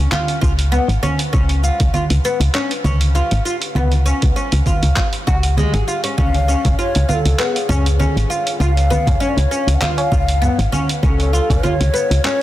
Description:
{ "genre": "organic downtempo", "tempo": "99 BPM", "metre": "4/4", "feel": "swing 54% on 16ths", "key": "unclear", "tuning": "A4 = 440 Hz", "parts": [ { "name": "oud", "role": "arpeggios", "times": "0.0-12.4 s", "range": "G#3 to G#4", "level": "-21 LUFS", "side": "left 1 dB", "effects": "tape echo, shimmer reverb" }, { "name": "woody FM bass", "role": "bass", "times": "0.0-12.2 s", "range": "G#1 to C#2", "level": "-16 LUFS", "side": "equal", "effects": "sidechain pumping" }, { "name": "dusty soul sampler-style drum kit", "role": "drums", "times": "0.1-12.4 s", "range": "cabasa, congas, handclaps, hi-hat", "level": "-22 LUFS", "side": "right 2 dB", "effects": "overdrive, studio reverb" }, { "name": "electronic kick drum", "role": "drums", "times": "0.4-11.6 s", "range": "none", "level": "-19 LUFS", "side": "equal", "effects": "overdrive, studio reverb" }, { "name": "breathy mellow ney", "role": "melody", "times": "6.2-12.4 s", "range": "G#4 to F#5", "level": "-22 LUFS", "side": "left 2 dB", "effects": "ping-pong delay, shimmer reverb" }, { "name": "tabla", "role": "percussion", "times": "6.4-11.6 s", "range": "none", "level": "-27 LUFS", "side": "equal", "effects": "none" } ], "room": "light reverb, small room ambience", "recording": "dense, heavily limited modern master", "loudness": "-14 LUFS", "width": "side -14 dB against mid", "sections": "0.0-12.4 A section", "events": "none", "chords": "0.0 N.C.; 6.2 C#" }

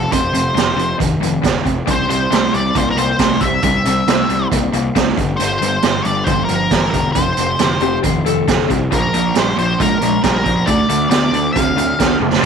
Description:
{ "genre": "classic rock", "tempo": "136 BPM", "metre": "4/4", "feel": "straight", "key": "unclear", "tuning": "A4 = 440 Hz", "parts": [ { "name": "octave-fuzz lead guitar", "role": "melody", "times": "0.0-12.2 s", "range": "A4 to F5", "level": "-19 LUFS", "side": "left 2 dB", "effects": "wah, distortion, slapback echo" }, { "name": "overdriven electric guitar", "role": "riff", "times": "0.0-12.5 s", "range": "F2 to C4", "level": "-21 LUFS", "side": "right 11 dB", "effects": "none" }, { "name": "raw garage guitar", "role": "riff", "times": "0.0-12.5 s", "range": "F2 to C4", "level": "-22 LUFS", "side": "left 15 dB", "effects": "overdrive" }, { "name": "fuzz picked electric bass", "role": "bass", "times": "0.0-12.4 s", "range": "E1 to D2", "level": "-21 LUFS", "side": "left 2 dB", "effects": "overdrive, tube saturation" }, { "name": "raw garage drum kit", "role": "drums", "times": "0.1-12.4 s", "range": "hi-hat, kick drum, snare drum, toms", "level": "-19 LUFS", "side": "right 5 dB", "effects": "none" }, { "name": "electric slide guitar", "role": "second line", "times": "7.8-8.8 s", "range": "G4 to C5", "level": "-20 LUFS", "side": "left 12 dB", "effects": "none" }, { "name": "tonewheel organ", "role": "sustained chords", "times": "12.1-12.5 s", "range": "C4 to F5", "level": "-25 LUFS", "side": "left 2 dB", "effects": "slow rotary speaker, overdrive, chorus vibrato" } ], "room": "light reverb, small room ambience", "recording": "1960s-style stereo with parts hard left and right", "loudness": "-13 LUFS", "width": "side -6 dB against mid", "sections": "0.0-12.4 A section", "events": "drum fill 12.2", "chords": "0.0 F5; 1.9 C; 5.2 Gm; 7.1 F; 8.9 Bb5; 10.7 Dm" }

